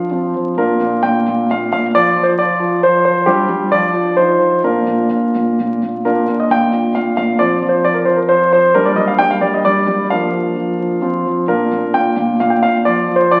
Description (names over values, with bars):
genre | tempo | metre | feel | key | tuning
classical-period piano sonatina | 133 BPM | 3/4 | rubato | Bb major | A4 = 441 Hz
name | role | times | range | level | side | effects
warm concert grand piano | solo | 0.0-13.4 s | Bb2 to G5 | -15 LUFS | equal | none
room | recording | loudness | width
wet recital hall reverb, RT60 1.5 s | very old 78 rpm record, vinyl crackle | -15 LUFS | mono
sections
0.0-6.1 A section; 6.1-13.4 A section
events
none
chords
0.1 F5; 0.6 Bb; 1.9 N.C.; 3.3 G5; 3.7 Dm/F; 4.2 F5; 4.6 Bb; 7.4 F5; 8.7 Gm; 10.1 Bb/F; 11.0 F5; 11.5 Bb; 12.9 N.C.